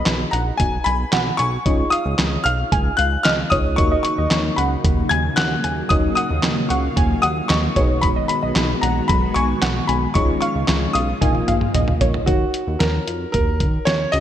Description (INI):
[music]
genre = synth-pop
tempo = 113 BPM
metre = 4/4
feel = straight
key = Eb minor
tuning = A4 = 440 Hz
[part]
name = clear concert grand piano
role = melody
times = 0.0-14.2 s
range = Gb4 to Ab6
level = -23 LUFS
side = left 2 dB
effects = none
[part]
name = warbly dusty pluck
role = second line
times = 0.0-12.1 s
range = Db5 to G#5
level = -26 LUFS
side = right 2 dB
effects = chorus, ping-pong delay
[part]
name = FM electric piano with auto-pan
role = accompaniment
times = 0.0-14.2 s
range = Db4 to F5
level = -28 LUFS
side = left 3 dB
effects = none
[part]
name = chorused synth bass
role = bass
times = 0.0-14.2 s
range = Bb1 to Eb3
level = -22 LUFS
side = equal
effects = none
[part]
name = lo-fi sampler-style drum kit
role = drums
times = 0.1-14.2 s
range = handclaps, hi-hat, kick drum, snare drum, toms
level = -21 LUFS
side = equal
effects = gated reverb
[part]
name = string machine, cellos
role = sustained chords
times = 3.8-12.3 s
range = Db3 to F5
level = -25 LUFS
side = equal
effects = ensemble chorus
[sound]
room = light reverb, digital ambience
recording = bright 1980s-style digital production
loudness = -16 LUFS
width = side -10 dB against mid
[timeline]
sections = 0.0-12.3 A section; 12.3-14.2 B section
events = drum fill 11.2-12.3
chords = 0.0 B6; 1.7 Dbadd9; 3.8 Ebm7; 7.8 B6; 10.2 Dbadd9; 11.2 Bbsus4; 12.3 Ebm7